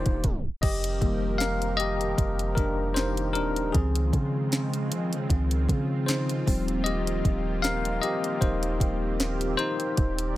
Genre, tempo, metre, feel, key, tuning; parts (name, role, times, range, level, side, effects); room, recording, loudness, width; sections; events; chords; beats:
contemporary R&B; 77 BPM; 4/4; swing 54% on 16ths; A4 = 441 Hz
bell-like tine electric piano; accompaniment; 0.0-10.4 s; Eb3 to F5; -28 LUFS; left 3 dB; fast stereo tremolo
lush unison pad; sustained chords; 0.0-10.4 s; Db3 to D5; -34 LUFS; right 2 dB; chorus, phaser, sidechain pumping
soft 808-style bass; bass; 0.0-10.4 s; Eb1 to F3; -29 LUFS; equal
smooth R&B drum kit; drums; 0.1-10.4 s; crash cymbal, hi-hat, kick drum, snare drum; -27 LUFS; equal
little or no reverb; tape stop; -24 LUFS; side -15 dB against mid
0.6-10.4 A section
tape stop 0.2-0.6; tine electric piano solo 0.6-10.4
0.0 Ebmaj9; 3.7 Dbmaj9; 6.5 Eb69
| 0.63 1.41 2.19 2.96 | 3.74 4.52 5.30 6.08 | 6.86 7.64 8.42 9.20 | 9.98